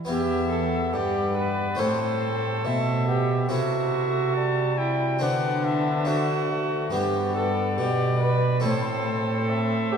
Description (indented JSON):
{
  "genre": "classical, renaissance-style consort dance",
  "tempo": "70 BPM",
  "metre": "4/4",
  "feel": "straight",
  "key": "E minor",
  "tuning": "A4 = 445 Hz",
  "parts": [
    { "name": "harpsichord", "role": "accompaniment", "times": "0.0-10.0 s", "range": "E2 to C5", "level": "-30 LUFS", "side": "left 1 dB", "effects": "none" },
    { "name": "bright cornet", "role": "melody", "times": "0.1-10.0 s", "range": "C5 to A5", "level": "-32 LUFS", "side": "left 5 dB", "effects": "none" },
    { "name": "warm viola", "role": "second line", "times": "0.1-10.0 s", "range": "D4 to B4", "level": "-27 LUFS", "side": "right 3 dB", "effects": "none" },
    { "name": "warm bassoon", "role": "accompaniment", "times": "0.1-10.0 s", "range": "G3 to C4", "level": "-30 LUFS", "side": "left 3 dB", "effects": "none" },
    { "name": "warm cello", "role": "bass", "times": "0.1-10.0 s", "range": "E2 to D3", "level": "-27 LUFS", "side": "right 1 dB", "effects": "none" }
  ],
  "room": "wet church reverb, RT60 3.4 s",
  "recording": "heard from further back in the room",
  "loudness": "-22 LUFS",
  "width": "side -7 dB against mid",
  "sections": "0.1-10.0 A section",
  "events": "none",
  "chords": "0.1 Em; 1.8 Am; 3.5 C; 5.2 D7; 6.9 G; 8.6 Am"
}